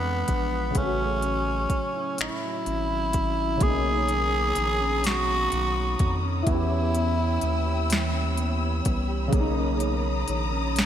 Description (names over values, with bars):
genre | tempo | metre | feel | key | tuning
slow six-eight R&B | 42 BPM (dotted quarters) | 6/8 | straight | B major | A4 = 440 Hz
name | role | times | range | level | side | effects
growling tenor saxophone | melody | 0.0-8.8 s | B3 to G#4 | -27 LUFS | equal | none
mellow electric guitar | second line | 0.0-10.9 s | A2 to G4 | -33 LUFS | right 3 dB | lush chorus
dark concert grand piano | accompaniment | 0.0-10.9 s | C#3 to G#4 | -32 LUFS | equal | ensemble chorus
round analog bass | bass | 0.0-10.9 s | G#1 to F2 | -28 LUFS | equal | none
smooth R&B drum kit | drums | 0.3-10.9 s | finger snaps, hi-hat, kick drum, snare drum | -27 LUFS | equal | overdrive
warm studio string section | sustained chords | 3.6-10.9 s | C#5 to E6 | -34 LUFS | left 2 dB | none
room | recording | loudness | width
moderate lush hall reverb, RT60 2.1 s | bright 1980s-style digital production | -23 LUFS | side -10 dB against mid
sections
0.0-3.6 A section; 3.6-10.9 B section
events
none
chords
0.0 E7b9; 0.8 A6; 3.6 Bmaj9; 6.5 Em6; 9.3 Bmaj9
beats
| 0.76 2.18 | 3.61 5.04 | 6.47 7.90 | 9.33 10.76